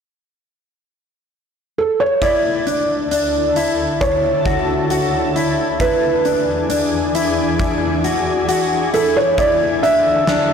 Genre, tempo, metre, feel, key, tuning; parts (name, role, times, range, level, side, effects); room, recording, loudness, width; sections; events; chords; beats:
dream pop; 67 BPM; 4/4; straight; D lydian; A4 = 441 Hz
felt-muted upright piano; melody; 1.8-10.5 s; A4 to E5; -17 LUFS; right 3 dB; tape echo
shimmering ambient pad; sustained chords; 2.7-10.5 s; D2 to A4; -21 LUFS; equal; chorus, built-in reverb
mellow electric guitar; arpeggios; 2.2-10.5 s; D4 to F#4; -20 LUFS; left 5 dB; analog chorus, tape echo
huge arena drum kit; drums; 2.2-10.5 s; hi-hat, kick drum, snare drum; -25 LUFS; equal
moderate concert hall reverb, RT60 2.3 s; blown-out, overdriven recording, overdrive; -14 LUFS; side -7 dB against mid
0.0-2.2 A section; 2.2-10.5 B section
0.0 N.C.; 2.2 Dsus2; 5.8 E7; 9.4 Dsus2
0.43 1.32 | 2.22 3.12 4.01 4.91 | 5.80 6.70 7.59 8.49 | 9.38 10.28